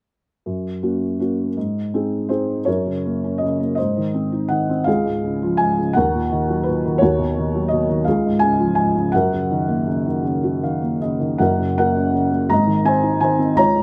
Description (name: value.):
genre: classical, lyrical solo piano.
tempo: 52-58 BPM (dotted quarters).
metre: 6/8.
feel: rubato.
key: F# major.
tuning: A4 = 441 Hz.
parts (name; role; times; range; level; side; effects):
felt-muted upright piano; solo; 0.5-13.8 s; F#1 to A#5; -20 LUFS; equal; none.
room: light reverb.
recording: close, detailed microphones.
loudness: -20 LUFS.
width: mono.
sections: 0.4-2.7 A section; 2.7-11.4 B section; 11.4-13.8 B section.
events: felt piano fill 10.2-11.4.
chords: 0.4 F#; 1.6 G#; 2.7 F#; 3.8 G#; 4.9 C#; 6.0 D#m; 7.0 B/D#; 8.1 C#; 9.1 F#6; 11.4 F#; 12.5 G#.